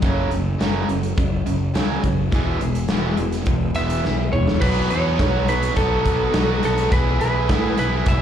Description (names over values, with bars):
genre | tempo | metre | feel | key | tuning
classic rock | 104 BPM | 4/4 | straight | unclear | A4 = 440 Hz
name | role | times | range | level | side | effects
picked steel-string acoustic guitar | accompaniment | 0.0-8.2 s | F#2 to G#4 | -30 LUFS | left 2 dB | slapback echo
distorted electric guitar | riff | 0.0-8.2 s | E2 to G#4 | -26 LUFS | right 9 dB | distortion, slapback echo
overdriven electric guitar | riff | 0.0-8.2 s | F#2 to G#4 | -29 LUFS | left 11 dB | slapback echo
fuzz fingered electric bass | bass | 0.0-8.2 s | E1 to A2 | -23 LUFS | equal | overdrive
big rock drum kit | drums | 0.0-8.2 s | crash cymbal, hi-hat, kick drum, snare drum, toms | -23 LUFS | equal | none
lightly driven lead guitar | melody | 3.8-8.2 s | A4 to E5 | -24 LUFS | right 1 dB | slapback echo
bright tonewheel organ | sustained chords | 4.3-8.2 s | F#3 to E#5 | -34 LUFS | equal | none
room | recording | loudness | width
light reverb | live gig heard through the venue's PA, club reverb | -18 LUFS | side -9 dB against mid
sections
0.0-4.6 A section; 4.6-8.2 B section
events
drum fill 4.0-4.6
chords
0.0 F#m; 2.3 E; 4.6 B; 6.9 E/B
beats
| 0.02 0.60 1.17 1.75 | 2.32 2.90 3.47 4.05 | 4.62 5.20 5.77 6.35 | 6.92 7.50 8.07